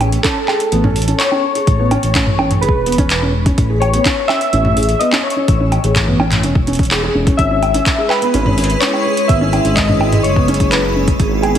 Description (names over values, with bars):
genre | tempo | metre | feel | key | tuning
IDM | 126 BPM | 4/4 | straight | unclear | A4 = 440 Hz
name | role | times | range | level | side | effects
felt-muted upright piano | arpeggios | 0.0-11.6 s | B3 to G#4 | -20 LUFS | right 1 dB | tape echo, shimmer reverb
dark detuned saw bass | bass | 0.0-11.6 s | E1 to A1 | -17 LUFS | equal | none
booming analog drum machine | drums | 0.0-11.6 s | bongos, handclaps, hi-hat, toms | -19 LUFS | equal | overdrive
warbly lo-fi synth keys | melody | 0.2-11.6 s | G#4 to E5 | -19 LUFS | left 1 dB | chorus, vintage 12-bit sampler grit, ping-pong delay, shimmer reverb
electronic kick drum | drums | 0.2-11.3 s | none | -16 LUFS | equal | none
icy glass pad | sustained chords | 7.4-11.6 s | G#3 to C#5 | -22 LUFS | right 1 dB | chorus, built-in reverb, shimmer reverb
room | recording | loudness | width
moderate echo chamber reverb, RT60 1.4 s, digital ambience | heavily compressed radio sound | -12 LUFS | side -9 dB against mid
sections
0.0-11.6 A section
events
none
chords
0.0 A; 7.4 C#m7